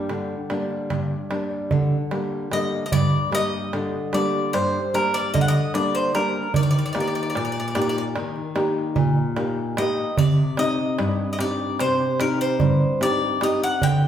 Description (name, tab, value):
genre	greek folk, Greek bouzouki band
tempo	149 BPM (eighths)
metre	9/8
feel	straight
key	G minor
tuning	A4 = 439 Hz
part	Greek bouzouki	melody	0.0-14.1 s	G4 to G5	-25 LUFS	left 1 dB	none
part	flamenco guitar	accompaniment	0.0-14.1 s	G2 to G4	-24 LUFS	left 1 dB	none
part	darbuka	percussion	0.1-14.1 s	none	-24 LUFS	right 3 dB	none
room	wet large studio reverb, RT60 1.2 s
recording	band playing live in one room, faint mains hum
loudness	-20 LUFS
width	side -9 dB against mid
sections	0.0-2.9 A section; 2.9-14.1 B section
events	none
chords	0.0 Gm; 6.5 Eb; 10.2 Cm